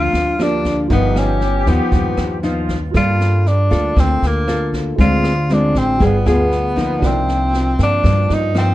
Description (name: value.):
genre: bossa nova.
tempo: 118 BPM.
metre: 4/4.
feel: straight.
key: G minor.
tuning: A4 = 440 Hz.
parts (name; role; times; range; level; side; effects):
warm tenor saxophone; melody; 0.0-8.7 s; Bb3 to F4; -19 LUFS; equal; plate reverb.
mellow small flute group; second line; 0.0-2.9 s; F4 to Bb4; -26 LUFS; left 2 dB; none.
nylon-string guitar; accompaniment; 0.0-8.7 s; G2 to A4; -20 LUFS; left 1 dB; none.
warm concert grand piano; accompaniment; 0.0-8.7 s; D4 to D#5; -29 LUFS; right 6 dB; none.
upright bass; bass; 0.0-8.7 s; G1 to G2; -18 LUFS; equal; none.
jazz brush drum kit; drums; 0.1-8.7 s; kick drum, rim click, snare drum; -23 LUFS; equal; none.
room: light reverb.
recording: dark, warm production.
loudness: -14 LUFS.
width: side -15 dB against mid.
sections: 0.0-2.9 A section; 2.9-8.7 B section.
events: none.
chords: 0.0 Gm7; 0.9 G7alt; 2.9 Gm9; 5.0 Dm7b5; 6.0 G7b9; 7.0 Cm11.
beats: 0.40 | 0.91 1.42 1.93 2.44 | 2.94 3.45 3.96 4.47 | 4.98 5.49 6.00 6.51 | 7.02 7.53 8.04 8.55.